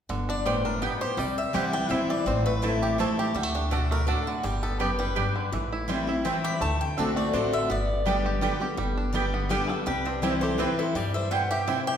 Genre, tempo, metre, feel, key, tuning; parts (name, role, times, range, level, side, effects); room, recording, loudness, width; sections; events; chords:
bluegrass; 166 BPM; 3/4; straight; G major; A4 = 441 Hz
bluegrass banjo; melody; 0.1-12.0 s; D3 to G4; -33 LUFS; right 3 dB
picked steel-string acoustic guitar; accompaniment; 0.1-12.0 s; F#2 to G4; -29 LUFS; left 2 dB
upright bass; bass; 0.1-11.7 s; G1 to G2; -31 LUFS; equal
picked swing-style acoustic guitar; melody; 0.3-12.0 s; D4 to B5; -31 LUFS; left 2 dB
mandolin; stabs; 0.5-11.8 s; A3 to A5; -32 LUFS; right 5 dB
lap resonator guitar; second line; 9.5-12.0 s; B3 to E5; -34 LUFS; left 2 dB
wet recital hall reverb, RT60 1.6 s; recorded in a church or concert hall; -24 LUFS; side -8 dB against mid
0.1-8.8 A section; 8.8-12.0 B section
0.1 G; 1.2 C; 2.3 Am; 3.4 D; 4.4 G; 5.5 Am7; 6.6 D7; 7.7 G; 9.9 C